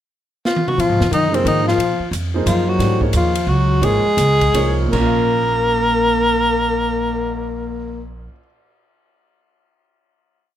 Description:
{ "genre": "modal jazz", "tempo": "152-180 BPM", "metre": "3/4", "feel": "swing 64% on 8ths", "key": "Bb minor", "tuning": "A4 = 440 Hz", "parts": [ { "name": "breathy tenor saxophone", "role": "melody", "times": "0.5-8.0 s", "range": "C4 to Bb4", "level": "-18 LUFS", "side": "equal", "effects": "plate reverb" }, { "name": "swinging big-band drum kit", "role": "drums", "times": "0.5-7.2 s", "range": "crash cymbal, cymbal swell, hi-hat, kick drum, ride cymbal, snare drum, toms", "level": "-26 LUFS", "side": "equal", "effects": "none" }, { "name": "warm trombone", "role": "second line", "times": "0.8-8.0 s", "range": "C3 to Bb3", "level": "-22 LUFS", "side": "left 4 dB", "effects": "none" }, { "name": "upright bass", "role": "bass", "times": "0.8-8.3 s", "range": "Ab1 to Bb2", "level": "-21 LUFS", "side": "right 1 dB", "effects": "none" }, { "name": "warm baby grand piano", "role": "accompaniment", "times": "1.3-8.4 s", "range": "Bb2 to F5", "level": "-23 LUFS", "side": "right 2 dB", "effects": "none" } ], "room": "moderate club reverb, RT60 0.5 s", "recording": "none", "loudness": "-15 LUFS", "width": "side -11 dB against mid", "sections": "0.0-0.8 pickup bar; 0.8-4.9 A section; 4.9-7.3 final chord", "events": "drum fill 0.4-0.8; slowing down 2.8-4.9", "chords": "0.0 N.C.; 0.8 Bb9sus4; 2.8 Ab9sus4; 4.9 Bbm", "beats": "0.12 0.45 | 0.78 1.12 1.45 | 1.79 2.12 2.46 | 2.79 3.13 3.47 | 3.82 4.17 4.54 | 4.93 5.32 5.72 | 6.11 6.51 6.90" }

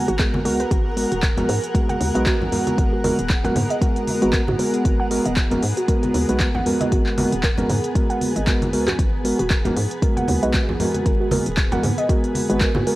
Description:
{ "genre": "deep house", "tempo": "116 BPM", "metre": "4/4", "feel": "swing 56% on 16ths", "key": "G# minor", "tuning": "A4 = 440 Hz", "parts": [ { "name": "mellow tine electric piano", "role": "stabs", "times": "0.0-13.0 s", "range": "G#3 to B4", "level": "-23 LUFS", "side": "equal", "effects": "analog delay" }, { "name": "granular cloud pad", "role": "texture", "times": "0.0-13.0 s", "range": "B3 to G#5", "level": "-28 LUFS", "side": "equal", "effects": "built-in reverb, sidechain pumping" }, { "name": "warbly dusty pluck", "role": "arpeggios", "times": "0.1-12.9 s", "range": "F#4 to F#5", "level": "-28 LUFS", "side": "right 2 dB", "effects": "chorus, phaser, sidechain pumping, analog delay" }, { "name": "hollow knocking FM bass", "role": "bass", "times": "0.1-12.8 s", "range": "D#1 to G#2", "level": "-26 LUFS", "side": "equal", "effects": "sidechain pumping" }, { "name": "deep house drum kit", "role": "drums", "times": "0.1-13.0 s", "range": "handclaps, hi-hat", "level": "-28 LUFS", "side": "equal", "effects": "small room ambience" }, { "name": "electronic kick drum", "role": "drums", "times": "0.2-12.7 s", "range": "none", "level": "-20 LUFS", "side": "equal", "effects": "small room ambience" }, { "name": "congas", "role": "percussion", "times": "0.3-12.8 s", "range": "none", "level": "-27 LUFS", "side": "right 1 dB", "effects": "sidechain pumping on perc" } ], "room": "light reverb", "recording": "dry, gritty hardware recording, vinyl crackle", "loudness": "-18 LUFS", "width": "side -17 dB against mid", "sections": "0.0-13.0 A section", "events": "drum fill 8.5-9.0", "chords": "0.0 G#m9", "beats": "0.20 | 0.71 1.23 1.75 2.27 | 2.78 3.30 3.82 4.33 | 4.85 5.37 5.89 6.40 | 6.92 7.44 7.96 8.47 | 8.99 9.51 10.02 10.54 | 11.06 11.57 12.09 12.61" }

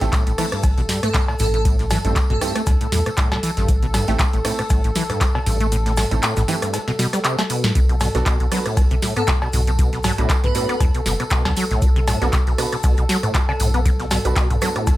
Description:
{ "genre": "acid house", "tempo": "118 BPM", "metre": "4/4", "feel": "swing 55% on 16ths", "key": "B phrygian", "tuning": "A4 = 440 Hz", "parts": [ { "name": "warm analog pad", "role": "sustained chords", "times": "0.0-15.0 s", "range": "A4", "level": "-30 LUFS", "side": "equal", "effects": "chorus, sidechain pumping" }, { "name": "deep acid bass", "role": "riff", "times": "0.0-14.9 s", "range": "G2 to B3", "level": "-24 LUFS", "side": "equal", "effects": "overdrive, analog chorus, sidechain pumping, tape echo" }, { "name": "clear baby grand piano", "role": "stabs", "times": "0.0-14.8 s", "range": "A3 to B4", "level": "-28 LUFS", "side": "right 5 dB", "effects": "tape echo" }, { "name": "round analog bass", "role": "bass", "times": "0.0-15.0 s", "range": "F#1 to A2", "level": "-22 LUFS", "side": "equal", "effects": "sidechain pumping" }, { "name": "booming analog drum machine", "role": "drums", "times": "0.0-15.0 s", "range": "cowbell, handclaps, hi-hat, rim click, snare drum, toms", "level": "-24 LUFS", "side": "equal", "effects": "none" }, { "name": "damped 70s drum kit", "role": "drums", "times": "0.0-15.0 s", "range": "hi-hat, shaker, snare drum", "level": "-38 LUFS", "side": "left 4 dB", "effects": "none" }, { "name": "tambourine", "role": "percussion", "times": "0.0-15.0 s", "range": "none", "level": "-34 LUFS", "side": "right 2 dB", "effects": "none" }, { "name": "electronic kick drum", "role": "drums", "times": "0.1-15.0 s", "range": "none", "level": "-19 LUFS", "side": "equal", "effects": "none" }, { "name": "airy dreamy lead", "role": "melody", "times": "1.0-2.5, 9.2-10.8 s", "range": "A4 to B4", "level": "-27 LUFS", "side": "right 1 dB", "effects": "chorus, vintage 12-bit sampler grit, analog delay" } ], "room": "light reverb", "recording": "none", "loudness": "-17 LUFS", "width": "side -16 dB against mid", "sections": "0.0-15.0 A section", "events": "kick drops out 5.7-7.8; drum fill 7.4-7.8", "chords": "0.0 Am7; 7.8 Bm7", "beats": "0.13 0.64 1.14 | 1.65 2.16 2.67 3.18 | 3.69 4.19 4.70 5.21 | 5.72 6.23 6.74 7.25 | 7.75 8.26 8.77 9.28 | 9.79 10.30 10.80 11.31 | 11.82 12.33 12.84 13.35 | 13.86 14.36 14.87" }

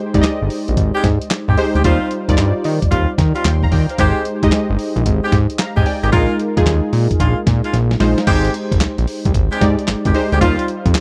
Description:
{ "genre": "R&B, new jack swing", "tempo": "112 BPM", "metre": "4/4", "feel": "swing 66% on 16ths", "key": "unclear", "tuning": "A4 = 441 Hz", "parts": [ { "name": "warm analog keys", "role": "accompaniment", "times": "0.0-11.0 s", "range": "G3 to C6", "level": "-22 LUFS", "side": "equal", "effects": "chorus" }, { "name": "fat analog bass", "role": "bass", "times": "0.1-10.9 s", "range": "G1 to Eb3", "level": "-19 LUFS", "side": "equal", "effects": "none" }, { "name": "dusty soul sampler-style drum kit", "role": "drums", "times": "0.1-11.0 s", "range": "crash cymbal, handclaps, hi-hat, kick drum, snare drum", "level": "-20 LUFS", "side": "equal", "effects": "none" }, { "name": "warm horn section", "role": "stabs", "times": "0.9-10.7 s", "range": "G3 to G4", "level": "-24 LUFS", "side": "equal", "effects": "none" } ], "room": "little or no reverb", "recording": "dry, close 1970s-style studio recording", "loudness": "-16 LUFS", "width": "mono", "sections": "0.0-8.3 A section; 8.3-11.0 B section", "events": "drum fill 7.7-8.3", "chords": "0.0 Abmaj7; 1.8 Eb69; 4.0 Abmaj7; 6.1 Bb7sus4; 8.3 Abmaj7; 10.4 Eb69", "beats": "0.23 0.77 1.31 | 1.84 2.38 2.91 3.45 | 3.98 4.52 5.06 5.59 | 6.13 6.66 7.20 7.74 | 8.27 8.81 9.34 9.88 | 10.41 10.95" }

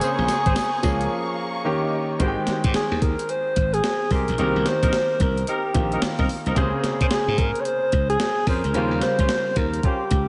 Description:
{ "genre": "R&B, new jack swing", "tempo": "110 BPM", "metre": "4/4", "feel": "swing 62% on 16ths", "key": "Ab major", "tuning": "A4 = 440 Hz", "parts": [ { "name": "breathy alto saxophone", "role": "melody", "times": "0.0-10.3 s", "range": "G4 to Db5", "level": "-26 LUFS", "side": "equal", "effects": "none" }, { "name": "bright concert grand piano", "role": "accompaniment", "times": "0.0-10.3 s", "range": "C3 to G5", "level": "-30 LUFS", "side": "equal", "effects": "none" }, { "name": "dark studio string section", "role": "sustained chords", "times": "0.0-2.2 s", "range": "C4 to Db6", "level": "-34 LUFS", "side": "equal", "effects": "none" }, { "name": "mellow horn section", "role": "stabs", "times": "0.0-10.0 s", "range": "Ab3 to C5", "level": "-33 LUFS", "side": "equal", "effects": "none" }, { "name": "clean 12-bit digital drum machine", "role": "drums", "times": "0.0-10.3 s", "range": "hi-hat, kick drum, snare drum, tambourine", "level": "-27 LUFS", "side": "equal", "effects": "none" }, { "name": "glassy slap bass", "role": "bass", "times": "0.2-10.3 s", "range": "Ab1 to Db3", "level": "-28 LUFS", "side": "equal", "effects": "none" } ], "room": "wet lush hall reverb, RT60 2.2 s", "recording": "big arena sound, nothing above 10.4 kHz", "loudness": "-22 LUFS", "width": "mono", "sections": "0.0-2.2 A section; 2.2-10.3 B section", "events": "break 1.1-2.2", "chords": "0.0 Bbm9; 0.8 Db6; 1.7 Eb7; 2.2 Abmaj7; 4.4 Cm7; 6.6 Bbm9/Db; 8.7 Eb13", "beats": "| 0.02 0.56 1.11 1.65 | 2.20 2.74 3.29 3.83 | 4.38 4.93 5.47 6.02 | 6.56 7.11 7.65 8.20 | 8.74 9.29 9.84" }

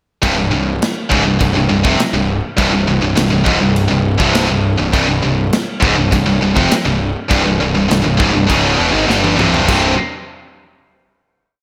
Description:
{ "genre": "heavy metal", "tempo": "101 BPM", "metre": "4/4", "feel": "straight", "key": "unclear", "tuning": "A4 = 440 Hz", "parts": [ { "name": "heavy high-gain guitar", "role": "riff", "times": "0.2-9.9 s", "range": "C2 to G3", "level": "-19 LUFS", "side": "equal", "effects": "distortion" }, { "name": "heavy high-gain guitar", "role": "riff", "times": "0.2-9.9 s", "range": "C2 to G3", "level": "-19 LUFS", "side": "equal", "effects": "distortion" }, { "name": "fuzz picked electric bass", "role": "bass", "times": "0.2-10.0 s", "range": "C1 to Ab1", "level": "-22 LUFS", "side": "equal", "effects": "overdrive" }, { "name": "modern studio drum kit", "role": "drums", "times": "0.2-9.8 s", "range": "crash cymbal, kick drum, snare drum, toms", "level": "-22 LUFS", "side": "equal", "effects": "none" } ], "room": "moderate lush hall reverb, RT60 1.7 s, small room reverb", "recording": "big arena sound", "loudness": "-14 LUFS", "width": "mono", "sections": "0.2-9.7 riff; 9.7-11.6 final chord", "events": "drum fill 9.1-9.7", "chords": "0.2 C5", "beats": "| 0.23 0.81 1.40 1.99 | 2.58 3.17 3.76 4.35 | 4.94 5.53 6.12 6.71 | 7.31 7.90 8.49 9.09 | 9.68" }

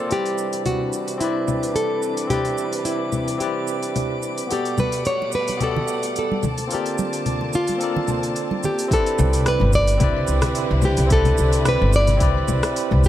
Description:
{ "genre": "sunset chillout", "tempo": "109 BPM", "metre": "4/4", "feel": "swing 54% on 16ths", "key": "C lydian", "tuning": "A4 = 440 Hz", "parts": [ { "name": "nylon-string guitar", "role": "melody", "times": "0.0-13.1 s", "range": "E4 to D5", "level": "-24 LUFS", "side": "equal", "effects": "digital delay" }, { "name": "barky tine electric piano", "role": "accompaniment", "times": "0.0-13.1 s", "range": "G3 to D5", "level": "-26 LUFS", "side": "moving between left 5 dB and right 4 dB", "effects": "medium stereo tremolo, auto-pan, digital delay" }, { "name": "rich symphonic string section", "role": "sustained chords", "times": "0.0-13.1 s", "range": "B2 to A5", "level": "-30 LUFS", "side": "left 1 dB", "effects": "low-pass filter" }, { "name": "smooth R&B drum kit", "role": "drums", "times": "0.1-13.1 s", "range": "cabasa, congas, hi-hat, rim click", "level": "-26 LUFS", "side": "left 2 dB", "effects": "none" }, { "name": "drifting glass-harmonics texture", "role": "texture", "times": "0.9-8.9 s", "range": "D6", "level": "-36 LUFS", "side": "left 1 dB", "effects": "chorus, built-in reverb" }, { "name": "congas", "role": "percussion", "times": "4.8-8.8 s", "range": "none", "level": "-28 LUFS", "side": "right 4 dB", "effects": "none" }, { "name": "electronic kick drum", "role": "drums", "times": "8.9-13.1 s", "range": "none", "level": "-21 LUFS", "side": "equal", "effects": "none" }, { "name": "upright bass", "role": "bass", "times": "9.2-13.1 s", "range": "G1 to C2", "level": "-19 LUFS", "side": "equal", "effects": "tube saturation" } ], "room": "light reverb, studio ambience", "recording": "none", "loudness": "-18 LUFS", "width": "side -12 dB against mid", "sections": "0.1-8.9 A section; 8.9-13.1 B section", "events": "filter sweep on string section 0.1-8.9", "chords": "0.1 Cmaj9; 4.5 Gmaj9; 6.4 Bbmaj9; 8.9 Cmaj9", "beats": "| 0.11 0.66 1.21 1.76 | 2.31 2.86 3.41 3.96 | 4.51 5.06 5.61 6.16 | 6.71 7.26 7.81 8.36 | 8.91 9.46 10.02 10.57 | 11.12 11.67 12.22 12.77" }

